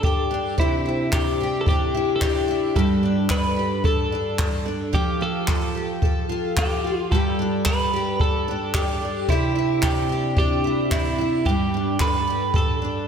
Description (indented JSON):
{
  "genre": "acoustic pop",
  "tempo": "110 BPM",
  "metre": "4/4",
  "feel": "straight",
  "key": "G mixolydian",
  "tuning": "A4 = 440 Hz",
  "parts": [
    { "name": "twelve-string electric guitar", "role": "melody", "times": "0.0-13.1 s", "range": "E4 to B4", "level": "-25 LUFS", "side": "equal", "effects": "spring reverb, slapback echo, digital delay" },
    { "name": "picked twelve-string acoustic guitar", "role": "accompaniment", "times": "0.0-13.1 s", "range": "G2 to A4", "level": "-24 LUFS", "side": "equal", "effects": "double-tracked left and right, slapback echo" },
    { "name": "jazz brush drum kit", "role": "drums", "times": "0.0-12.7 s", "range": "handclaps, kick drum", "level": "-24 LUFS", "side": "equal", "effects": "none" }
  ],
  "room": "moderate lush hall reverb, RT60 1.9 s, small room ambience",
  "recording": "big arena sound",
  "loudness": "-20 LUFS",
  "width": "side -7 dB against mid",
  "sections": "0.0-13.1 A section",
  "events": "none",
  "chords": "0.0 Gsus2; 0.6 Cadd9; 2.8 Gsus2; 4.9 Fadd9; 7.1 Gsus2; 9.3 Cadd9; 11.5 Gsus2",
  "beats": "0.03 | 0.58 1.12 1.67 2.21 | 2.75 3.30 3.84 4.39 | 4.93 5.48 6.02 6.57 | 7.11 7.65 8.20 8.74 | 9.28 9.83 10.37 10.91 | 11.46 12.00 12.54"
}